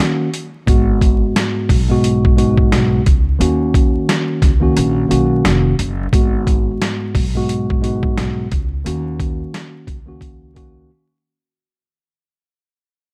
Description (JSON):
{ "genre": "hip hop, boom-bap hip-hop", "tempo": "88 BPM", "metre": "4/4", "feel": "swing 61% on 16ths", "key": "G# minor", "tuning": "A4 = 441 Hz", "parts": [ { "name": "mellow tine electric piano", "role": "accompaniment", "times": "0.0-10.9 s", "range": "G#2 to F#4", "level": "-20 LUFS", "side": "equal", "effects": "cassette tape, high-pass filter, low-pass filter" }, { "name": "boom bap sampler-style drum kit", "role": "drums", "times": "0.0-10.8 s", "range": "hi-hat, kick drum, snare drum", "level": "-19 LUFS", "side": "equal", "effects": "none" }, { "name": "upright bass", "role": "bass", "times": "0.7-10.9 s", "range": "E#1 to D#2", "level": "-22 LUFS", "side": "equal", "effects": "none" } ], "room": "light reverb", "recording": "vinyl crackle", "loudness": "-16 LUFS", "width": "mono", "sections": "0.0-6.1 A section; 6.1-11.6 B section", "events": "kick muted 4.8-6.1; fade-out 6.1-11.6; break 10.9-11.6", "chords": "0.0 D#m7; 0.7 G#m7; 3.4 D#m7; 6.1 G#m7; 8.9 D#m7" }